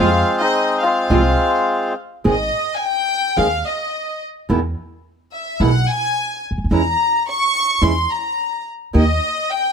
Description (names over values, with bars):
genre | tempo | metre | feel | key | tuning
tango | 107 BPM | 4/4 | rubato | unclear | A4 = 441 Hz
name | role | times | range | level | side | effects
bandoneon | melody | 0.0-1.9 s | Ab3 to F4 | -17 LUFS | left 1 dB | none
warm studio violin section | second line | 0.0-9.7 s | Eb5 to Db6 | -20 LUFS | left 2 dB | none
flamenco guitar | accompaniment | 0.0-9.0 s | B2 to Ab4 | -19 LUFS | right 3 dB | none
muted studio string section | stabs | 0.0-1.3 s | Ab3 to F4 | -24 LUFS | right 2 dB | none
upright bass | bass | 0.0-9.2 s | Ab1 to F2 | -18 LUFS | right 1 dB | none
room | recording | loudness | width
light reverb | close, detailed microphones | -16 LUFS | side -6 dB against mid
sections
0.0-2.3 A section; 2.3-9.7 B section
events
violin section solo 2.3-9.7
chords
0.0 Fm; 2.3 Ab; 4.5 Emaj7; 6.7 Dbm6/Fb; 8.9 Eb